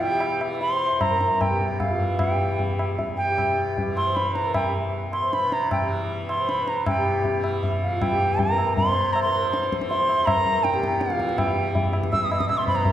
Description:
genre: indian classical, Hindustani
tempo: 149-164 BPM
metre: 3/4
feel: straight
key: E raga todi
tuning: A4 = 440 Hz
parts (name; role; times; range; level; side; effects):
- bright reedy bansuri; melody; 0.0-12.9 s; F5 to E6; -24 LUFS; right 1 dB; none
- pedal harmonium; second line; 0.0-12.9 s; F4 to E5; -29 LUFS; left 3 dB; none
- tanpura; drone; 0.0-12.9 s; E2 to E3; -33 LUFS; equal; none
- tabla; percussion; 0.2-12.9 s; none; -26 LUFS; equal; none
room: wet concert hall reverb, RT60 2.1 s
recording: heard from further back in the room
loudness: -21 LUFS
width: side -11 dB against mid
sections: 0.0-6.9 A section; 6.9-12.9 B section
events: speeding up 0.0-12.9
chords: none

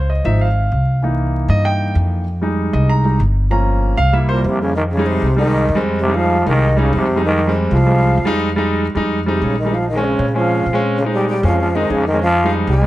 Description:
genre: jazz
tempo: 193 BPM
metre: 4/4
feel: straight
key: F minor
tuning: A4 = 440 Hz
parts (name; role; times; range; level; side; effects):
- warm concert grand piano; accompaniment; 0.0-12.9 s; E3 to Bb5; -19 LUFS; right 1 dB; none
- upright bass; bass; 0.0-12.9 s; G1 to Bb2; -17 LUFS; equal; none
- growling trombone; melody; 4.3-12.9 s; Bb2 to Ab3; -19 LUFS; right 1 dB; none
- breathy mellow silver concert flute; second line; 4.3-12.9 s; Bb4 to Ab5; -24 LUFS; left 2 dB; none
room: moderate spring reverb, RT60 1.7 s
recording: dark, warm production, vinyl crackle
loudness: -14 LUFS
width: side -16 dB against mid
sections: 0.0-4.8 A section; 4.8-12.9 B section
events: grand piano solo 0.0-4.8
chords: 0.0 Dbmaj7; 1.0 C7#9; 2.3 Fm7; 3.5 Gm7b5; 4.1 C7; 4.8 Fm7; 9.7 Bbm7; 12.2 Fm7

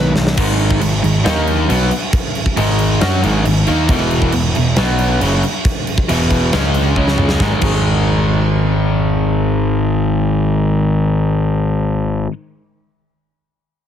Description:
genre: hard rock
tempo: 137 BPM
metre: 4/4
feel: straight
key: G# minor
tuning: A4 = 441 Hz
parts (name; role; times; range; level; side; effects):
- overdriven semi-hollow guitar; riff; 0.0-12.3 s; E2 to F#4; -16 LUFS; left 1 dB; spring reverb
- fuzz picked electric bass; bass; 0.0-12.3 s; E1 to F#2; -17 LUFS; equal; overdrive
- huge arena drum kit; drums; 0.2-7.7 s; crash cymbal, kick drum, snare drum, toms; -18 LUFS; equal; none
room: small room ambience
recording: heavily compressed radio sound, multiband compression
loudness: -13 LUFS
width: side -9 dB against mid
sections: 0.4-7.4 A section; 7.4-10.9 B section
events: drum fill 0.0-0.4, 7.0-7.4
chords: 0.4 G#5; 1.3 D#5; 1.7 G#m; 3.9 E5; 4.8 B5; 5.2 E5; 6.5 C#5; 7.4 G#5

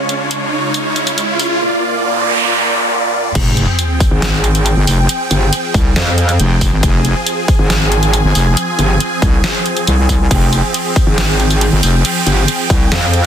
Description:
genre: heavy wobble dubstep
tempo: 138 BPM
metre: 4/4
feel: half-time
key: F minor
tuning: A4 = 440 Hz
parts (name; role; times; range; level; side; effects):
- supersaw chords; sustained chords; 0.0-13.3 s; Bb2 to Ab5; -17 LUFS; right 1 dB; phaser, sidechain pumping
- riser, noise sweep and sub drop; sound effects; 0.0-5.1 s; none; -17 LUFS; right 1 dB; none
- dubstep drum kit; drums; 0.1-13.2 s; crash cymbal, hi-hat, snare drum; -18 LUFS; right 1 dB; overdrive, high-pass filter on hats, high-pass filter on cymbals, high-pass filter on snare, high-pass filter on room
- wobble bass; bass; 3.4-12.9 s; F1 to C2; -13 LUFS; equal; chorus, overdrive
- electronic kick drum; drums; 3.4-12.8 s; none; -14 LUFS; equal; overdrive
- metallic wobble bass; bass; 4.1-13.3 s; G1 to F2; -13 LUFS; equal; distortion, chorus, overdrive
room: little or no reverb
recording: dense, heavily limited modern master, high-pass filter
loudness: -11 LUFS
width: side -9 dB against mid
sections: 0.0-3.4 A section; 3.4-13.3 B section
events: build-up 0.0-3.4; riser 0.0-1.6; noise sweep 1.6-3.4; drop 3.4-13.3; impact 3.4-5.1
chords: 0.0 Db; 1.6 Bb; 3.4 Fmadd9

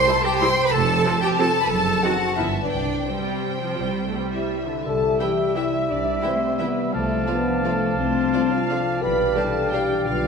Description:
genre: classical, orchestral ballroom waltz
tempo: 160-196 BPM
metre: 3/4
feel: rubato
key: C major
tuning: A4 = 439 Hz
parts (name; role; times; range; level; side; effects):
- rich chamber violin section; melody; 0.0-10.3 s; A4 to B5; -30 LUFS; left 3 dB; none
- rich chamber violin section; second line; 0.0-9.8 s; C5 to C6; -28 LUFS; left 2 dB; none
- concert harp; arpeggios; 0.0-10.3 s; F2 to A5; -30 LUFS; left 6 dB; none
- dark chamber cello section; bass; 0.0-10.3 s; D3 to C5; -26 LUFS; right 4 dB; none
- rich symphonic viola section; accompaniment; 0.1-9.8 s; D3 to G4; -30 LUFS; right 2 dB; none
- warm chamber double bass section; bass; 0.7-10.3 s; F1 to C2; -29 LUFS; right 5 dB; none
- dark French horn section; sustained chords; 4.3-10.3 s; A3 to B4; -23 LUFS; left 3 dB; none
- mellow clarinet; second line; 4.8-10.3 s; D5 to E5; -32 LUFS; equal; none
- silver concert flute; second line; 4.8-10.3 s; E5 to A5; -32 LUFS; equal; none
- mellow bassoon; accompaniment; 4.8-10.3 s; F3 to G3; -30 LUFS; right 4 dB; none
- warm cor anglais; second line; 4.9-10.3 s; E5 to F5; -30 LUFS; right 2 dB; none
room: wet concert hall reverb, RT60 1.9 s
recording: minimal, uncompressed stereo recording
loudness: -19 LUFS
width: side -5 dB against mid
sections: 0.0-4.8 A section; 4.8-10.3 B section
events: none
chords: 0.0 C; 0.7 F; 1.7 F#dim7; 2.4 G7; 2.7 C; 6.9 Dm7/C; 9.0 G7/B

